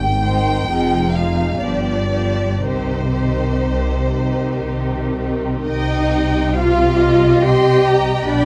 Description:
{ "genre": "classical, slow romantic movement for string orchestra", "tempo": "57-71 BPM", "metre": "3/4", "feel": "rubato", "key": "C minor", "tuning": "A4 = 436 Hz", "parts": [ { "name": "rich studio violin section", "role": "melody", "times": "0.0-8.4 s", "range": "C5 to G5", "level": "-26 LUFS", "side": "equal", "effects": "none" }, { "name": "warm studio double bass section", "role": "bass", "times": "0.0-8.4 s", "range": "F1 to C2", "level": "-24 LUFS", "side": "equal", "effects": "none" }, { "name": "warm symphonic cello section", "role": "bass", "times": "0.0-8.4 s", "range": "F2 to C3", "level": "-25 LUFS", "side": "equal", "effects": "none" }, { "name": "warm symphonic violin section", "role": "second line", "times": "0.2-8.4 s", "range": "D4 to C6", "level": "-27 LUFS", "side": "equal", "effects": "none" }, { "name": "warm studio viola section", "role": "accompaniment", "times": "0.2-8.4 s", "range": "Eb3 to G4", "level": "-21 LUFS", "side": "equal", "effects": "none" } ], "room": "light reverb", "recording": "close, detailed microphones", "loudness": "-17 LUFS", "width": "mono", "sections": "0.0-5.7 A section; 5.7-8.4 B section", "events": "none", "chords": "0.0 Abmaj7; 0.7 Fm7; 1.6 G7; 2.6 Cm" }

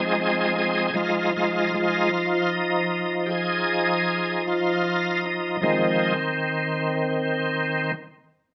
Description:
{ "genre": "blues", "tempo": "51 BPM (dotted quarters)", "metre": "12/8", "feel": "straight", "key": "F minor", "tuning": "A4 = 440 Hz", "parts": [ { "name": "bright tonewheel organ", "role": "sustained chords", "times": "0.0-7.9 s", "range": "Eb3 to Ab4", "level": "-24 LUFS", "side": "equal", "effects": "slow rotary speaker, overdrive, chorus vibrato" } ], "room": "moderate large studio reverb, RT60 0.8 s", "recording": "band playing live in one room", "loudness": "-24 LUFS", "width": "mono", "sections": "0.0-8.5 A section", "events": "tonewheel organ solo 0.0-8.5", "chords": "0.0 Fm7" }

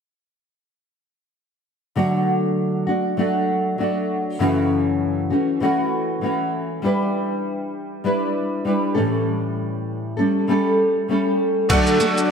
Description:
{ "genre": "acoustic pop", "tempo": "98 BPM", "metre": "4/4", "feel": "swing 55% on 16ths", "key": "D major", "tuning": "A4 = 444 Hz", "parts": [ { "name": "nylon-string guitar", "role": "accompaniment", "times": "2.0-12.3 s", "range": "F#2 to B4", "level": "-19 LUFS", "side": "equal", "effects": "double-tracked left and right" }, { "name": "bright upright piano", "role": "accompaniment", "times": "11.7-12.3 s", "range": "D4 to F#5", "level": "-24 LUFS", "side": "left 4 dB", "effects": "none" }, { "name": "shimmering ambient pad", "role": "sustained chords", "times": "12.0-12.3 s", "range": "A3 to F#5", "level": "-26 LUFS", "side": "left 2 dB", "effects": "chorus, built-in reverb" }, { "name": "bowl-back mandolin", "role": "arpeggios", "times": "11.7-12.3 s", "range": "A3 to F#4", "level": "-23 LUFS", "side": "right 5 dB", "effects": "none" }, { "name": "dusty soul sampler-style drum kit", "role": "drums", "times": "11.7-12.3 s", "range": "crash cymbal, kick drum, shaker", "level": "-21 LUFS", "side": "equal", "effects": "none" } ], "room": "wet lush hall reverb, RT60 2.2 s", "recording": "bright 1980s-style digital production", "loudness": "-19 LUFS", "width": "side -6 dB against mid", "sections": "2.0-11.7 A section", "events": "none", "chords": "2.0 D; 4.4 F#m7; 6.8 Em7/G; 9.0 A7; 11.7 D" }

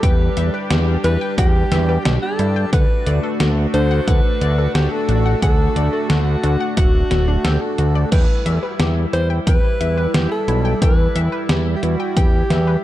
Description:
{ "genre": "synthwave", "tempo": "89 BPM", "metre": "4/4", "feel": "straight", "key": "E minor", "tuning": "A4 = 440 Hz", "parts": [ { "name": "warm alto saxophone", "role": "melody", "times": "0.0-12.8 s", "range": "F#4 to C5", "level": "-23 LUFS", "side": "equal", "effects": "ping-pong delay" }, { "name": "chorused pulse-width pad", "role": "sustained chords", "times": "0.0-12.8 s", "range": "G3 to G4", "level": "-25 LUFS", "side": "equal", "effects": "sidechain pumping" }, { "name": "analog pluck", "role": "arpeggios", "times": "0.0-12.7 s", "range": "D4 to G5", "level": "-28 LUFS", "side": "left 4 dB", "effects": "chorus, ping-pong delay" }, { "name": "fat analog bass", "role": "bass", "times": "0.0-12.8 s", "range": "D1 to G2", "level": "-18 LUFS", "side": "equal", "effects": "sidechain pumping" }, { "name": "detuned 8-bit digital drum machine", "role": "drums", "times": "0.0-12.6 s", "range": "crash cymbal, hi-hat, snare drum", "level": "-22 LUFS", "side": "equal", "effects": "none" }, { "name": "electronic kick drum", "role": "drums", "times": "0.0-12.3 s", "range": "none", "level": "-16 LUFS", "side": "equal", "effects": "none" } ], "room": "light reverb", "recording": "dark, warm production", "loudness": "-15 LUFS", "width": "side -14 dB against mid", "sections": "0.0-12.8 A section", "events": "none", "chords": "0.0 Em; 2.7 D; 8.1 Em" }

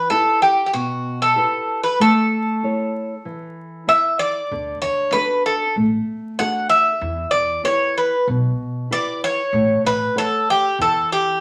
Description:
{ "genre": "greek folk, Greek bouzouki band", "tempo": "96 BPM", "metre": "4/4", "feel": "straight", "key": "unclear", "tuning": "A4 = 440 Hz", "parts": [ { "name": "Greek bouzouki", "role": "melody", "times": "0.0-11.4 s", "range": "F#4 to F#5", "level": "-20 LUFS", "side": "equal", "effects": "none" }, { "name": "nylon-string guitar", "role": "accompaniment", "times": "0.0-11.4 s", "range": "B2 to F#5", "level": "-27 LUFS", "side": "equal", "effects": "none" }, { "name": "upright bass", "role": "bass", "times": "4.5-11.0 s", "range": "A1 to E2", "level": "-29 LUFS", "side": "equal", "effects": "none" } ], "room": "wet studio reverb, RT60 0.7 s", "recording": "vinyl crackle", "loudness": "-19 LUFS", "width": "mono", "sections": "0.0-11.4 A section", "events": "none", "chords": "0.0 Em; 2.0 A; 4.5 D; 7.0 Em; 9.5 A6" }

